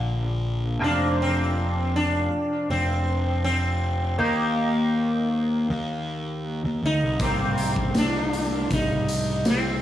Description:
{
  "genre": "psychedelic rock",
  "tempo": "80 BPM",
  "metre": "4/4",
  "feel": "straight",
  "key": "unclear",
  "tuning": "A4 = 440 Hz",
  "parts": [
    { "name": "twangy electric guitar", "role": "riff", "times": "0.0-9.8 s", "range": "F2 to G4", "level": "-30 LUFS", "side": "equal", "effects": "flanger" },
    { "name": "fuzz picked electric bass", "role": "bass", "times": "0.0-9.8 s", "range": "F1 to Eb2", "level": "-25 LUFS", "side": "equal", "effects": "overdrive" },
    { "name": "sitar", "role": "melody", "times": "0.8-9.8 s", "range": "Bb3 to Eb4", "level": "-27 LUFS", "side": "equal", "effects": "tape echo" },
    { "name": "raw garage drum kit", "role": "drums", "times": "7.2-9.6 s", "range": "hi-hat, kick drum, snare drum", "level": "-25 LUFS", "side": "equal", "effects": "none" }
  ],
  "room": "light reverb, small room reverb",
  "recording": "studio reverb",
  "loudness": "-22 LUFS",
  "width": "side -12 dB against mid",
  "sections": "0.0-9.8 A section",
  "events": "none",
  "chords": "0.0 Bb; 0.8 Fsus4; 4.2 Eb; 7.2 Cm7"
}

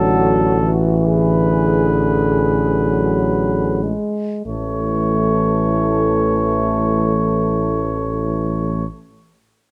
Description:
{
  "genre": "classical, hymn-like piece for brass band",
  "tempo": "30-50 BPM (dotted quarters)",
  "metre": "6/8",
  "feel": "rubato",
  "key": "A major",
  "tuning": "A4 = 440 Hz",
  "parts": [
    { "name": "clear flugelhorn", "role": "melody", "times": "0.0-8.8 s", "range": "A4 to C#5", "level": "-26 LUFS", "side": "equal", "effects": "none" },
    { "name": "warm French horn section", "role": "second line", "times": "0.0-8.8 s", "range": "F#4 to A4", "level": "-25 LUFS", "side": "equal", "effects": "none" },
    { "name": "mellow euphonium", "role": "accompaniment", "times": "0.0-8.8 s", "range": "E3 to A3", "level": "-24 LUFS", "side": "equal", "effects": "none" },
    { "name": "warm trombone", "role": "accompaniment", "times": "0.0-8.8 s", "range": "D3 to E3", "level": "-26 LUFS", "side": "equal", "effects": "none" },
    { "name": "mellow tuba", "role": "bass", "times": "0.0-8.8 s", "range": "A1", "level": "-22 LUFS", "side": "equal", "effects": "none" }
  ],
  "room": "light reverb",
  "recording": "close, detailed microphones",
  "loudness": "-18 LUFS",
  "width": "mono",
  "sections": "0.0-4.5 A section; 4.5-8.1 B section",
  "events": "slowing down 0.0-4.5",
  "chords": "0.0 D/A; 1.0 E7/A; 4.5 A"
}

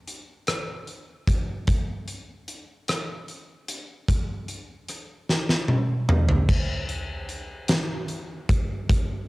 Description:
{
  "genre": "pop",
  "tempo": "50 BPM (dotted quarters)",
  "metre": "6/8",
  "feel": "straight",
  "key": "none",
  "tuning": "none",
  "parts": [
    { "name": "huge arena drum kit", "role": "drums", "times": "0.1-9.1 s", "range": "crash cymbal, hi-hat, kick drum, rim click, snare drum, toms", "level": "-23 LUFS", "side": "equal", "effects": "cassette tape" }
  ],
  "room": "light reverb",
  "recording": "home recording on cassette",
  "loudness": "-23 LUFS",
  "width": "side -22 dB against mid",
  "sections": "0.0-6.5 A section; 6.5-9.3 B section",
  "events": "drum fill 5.3-6.5",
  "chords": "none"
}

